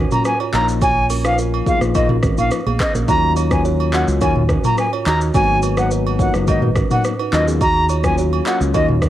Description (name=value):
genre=afrobeats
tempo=106 BPM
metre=4/4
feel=straight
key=Eb minor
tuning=A4 = 439 Hz
part: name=kalimba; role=riff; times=0.0-9.1 s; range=Cb4 to Eb5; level=-24 LUFS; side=right 8 dB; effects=tape echo
part: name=fingered electric bass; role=bass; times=0.0-9.1 s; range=Gb1 to Eb2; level=-19 LUFS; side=equal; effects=none
part: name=reedy jazz flute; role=melody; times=0.1-8.9 s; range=Eb5 to Bb5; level=-20 LUFS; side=equal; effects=cassette tape
part: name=bell-like tine electric piano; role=accompaniment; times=0.1-9.0 s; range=F3 to F4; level=-23 LUFS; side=left 9 dB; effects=none
part: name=afro-pop drum kit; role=drums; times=0.1-9.1 s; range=handclaps, hi-hat, kick drum, rim click, shaker, toms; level=-20 LUFS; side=equal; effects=overdrive, cassette tape
part: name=agogo bells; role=percussion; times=0.1-8.9 s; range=none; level=-29 LUFS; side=right 9 dB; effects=none
room=light reverb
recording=home recording on cassette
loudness=-14 LUFS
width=side -13 dB against mid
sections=0.0-9.1 A section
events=none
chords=0.0 Ebm7 (rootless); 0.5 Bbsus4; 3.1 Ebm7; 5.3 Abm7; 7.3 Ebm7